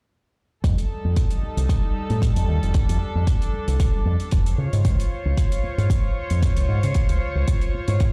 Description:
nu-disco, nu disco; 114 BPM; 4/4; swing 55% on 16ths; F mixolydian; A4 = 439 Hz
warm studio string section; sustained chords; 0.6-8.1 s; G3 to Db5; -33 LUFS; equal; sidechain pumping
fingered electric bass with an envelope filter; bass; 0.6-8.0 s; F1 to Db3; -24 LUFS; equal
electronic kick drum; drums; 0.6-8.1 s; -23 LUFS; equal
hi-hat; drums; 0.6-8.1 s; -42 LUFS; equal
small room ambience; played on a big sound system in a bare room, large studio reverb; -22 LUFS; mono
0.6-8.1 A section
0.6 F9; 4.6 Dbmaj7

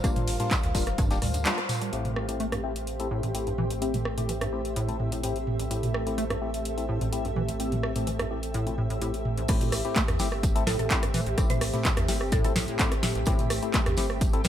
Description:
acid house; 127 BPM; 4/4; straight; A minor; A4 = 443 Hz
lush unison pad; sustained chords; 0.0-14.5 s; G3 to Bb4; -37 LUFS; equal; chorus, sidechain pumping
acid bass, square; riff; 0.0-14.5 s; A1 to C4; -34 LUFS; equal; analog chorus
percussive organ stab; stabs; 0.0-14.4 s; G3 to A4; -35 LUFS; left 5 dB; chorus, vintage 12-bit sampler grit, dub echo
warm sub bass; bass; 0.0-14.5 s; D1 to E2; -34 LUFS; equal; sidechain pumping
booming analog drum machine; drums; 0.0-14.5 s; crash cymbal, handclaps, hi-hat, rim click, snare drum, toms; -30 LUFS; right 1 dB
electronic kick drum; drums; 0.0-1.1, 9.5-14.3 s; -26 LUFS; equal
soft brush drum kit; drums; 0.0-1.8, 9.5-14.5 s; hi-hat, snare drum, tambourine; -42 LUFS; right 2 dB
granular cloud pad; texture; 0.0-14.5 s; G4 to F5; -35 LUFS; equal; built-in reverb, sidechain pumping
mallet-like synth pluck; melody; 10.7-12.5 s; A4 to C5; -36 LUFS; equal; wide subtle chorus, tape echo
light reverb, digital ambience; -25 LUFS; side -10 dB against mid
0.0-1.9 A section; 1.9-9.5 B section; 9.5-14.5 C section
filter sweep on acid bass 0.0-1.9; band accent 1.5; drop 9.5-14.5
0.0 Gm7; 1.9 Am7

